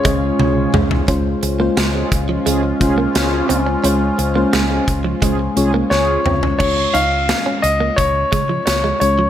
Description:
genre	1980s-style pop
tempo	87 BPM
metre	4/4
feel	straight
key	Db major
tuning	A4 = 440 Hz
part	warm concert grand piano	melody	0.0-0.7, 5.9-9.3 s	Db5 to F5	-18 LUFS	left 2 dB	digital delay
part	mellow FM electric piano	accompaniment	0.0-9.3 s	Ab3 to Db5	-21 LUFS	left 2 dB	chorus
part	sweeping resonant pad	sustained chords	0.0-6.6 s	Ab3 to F4	-23 LUFS	equal	chorus, phaser
part	direct-recorded clean electric guitar	riff	0.0-9.3 s	F3 to Eb4	-24 LUFS	right 5 dB	lush chorus, digital delay
part	mellow synth brass	stabs	0.0-6.2 s	Db4 to Ab4	-24 LUFS	right 2 dB	chorus
part	big rock drum kit	drums	0.0-9.2 s	crash cymbal, hi-hat, kick drum, snare drum, toms	-20 LUFS	equal	gated reverb
part	vintage muted fingered electric bass	bass	0.1-9.3 s	C2 to Db3	-22 LUFS	equal	none
room	moderate concert hall reverb, RT60 2.1 s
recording	none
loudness	-14 LUFS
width	side -10 dB against mid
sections	0.0-1.1 A section; 1.1-6.6 B section; 6.6-9.3 C section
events	drum fill 0.4-1.1, 5.9-6.6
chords	0.0 Dbmaj7; 6.6 Db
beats	0.40 | 1.08 1.77 2.46 3.15 | 3.84 4.53 5.22 5.91 | 6.60 7.29 7.98 8.67

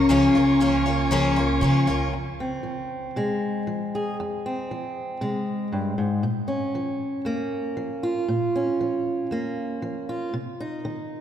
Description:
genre	indie folk with a building arrangement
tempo	117 BPM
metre	4/4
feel	straight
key	F minor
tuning	A4 = 437 Hz
part	picked twelve-string acoustic guitar	accompaniment	0.0-2.1 s	Db3 to F4	-20 LUFS	left 2 dB	none
part	mellow tonewheel organ	sustained chords	0.0-2.1 s	F4 to Db6	-29 LUFS	right 2 dB	slow rotary speaker
part	upright bass	bass	0.0-2.1 s	Db2 to Db3	-25 LUFS	right 1 dB	none
part	fingerpicked steel-string acoustic guitar	accompaniment	2.1-11.2 s	F2 to Ab4	-26 LUFS	equal	none
room	wet church reverb, RT60 3.8 s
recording	recorded in a church or concert hall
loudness	-22 LUFS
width	side -10 dB against mid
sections	0.0-2.1 A section; 2.1-11.2 B section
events	none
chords	0.0 Bbm/Db; 2.1 Fm; 6.2 Bbm; 10.3 Cm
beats	| 0.10 0.61 1.12 1.63 | 2.14 2.65 3.16 3.67 | 4.18 4.70 5.21 5.72 | 6.23 6.74 7.26 7.77 | 8.28 8.79 9.30 9.81 | 10.33 10.84

